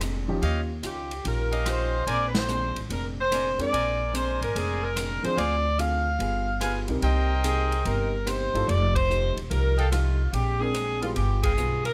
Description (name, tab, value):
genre	jazz, big band swing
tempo	145 BPM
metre	4/4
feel	swing 66% on 8ths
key	Bb mixolydian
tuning	A4 = 442 Hz
part	hollow-body jazz guitar	accompaniment	0.0-11.9 s	Bb2 to Ab4	-38 LUFS	equal	none
part	upright bass	bass	0.0-11.9 s	E1 to F2	-29 LUFS	equal	none
part	swinging big-band drum kit	drums	0.0-11.9 s	hi-hat, kick drum, ride cymbal, rim click, snare drum	-37 LUFS	equal	none
part	clear upright piano	accompaniment	0.3-0.4, 3.6-11.2 s	F3 to Bb4	-34 LUFS	equal	none
part	clear trumpet section	stabs	0.4-11.5 s	Db4 to Ab5	-34 LUFS	equal	none
part	clear saxophone section	melody	0.9-11.9 s	F4 to F5	-30 LUFS	equal	none
room	light reverb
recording	close, detailed microphones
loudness	-26 LUFS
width	mono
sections	0.0-11.9 A section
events	band accent 2.3, 8.9, 11.4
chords	0.4 Eb9; 2.1 Bb9; 5.4 Dm7b5; 6.2 G7b9; 7.0 Cm7; 8.7 F9; 10.3 Bb9; 11.2 G7b9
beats	0.01 | 0.42 0.83 1.25 1.66 | 2.07 2.48 2.90 3.31 | 3.72 4.14 4.55 4.96 | 5.37 5.79 6.20 6.61 | 7.03 7.44 7.85 8.27 | 8.68 9.09 9.51 9.92 | 10.34 10.75 11.16 11.58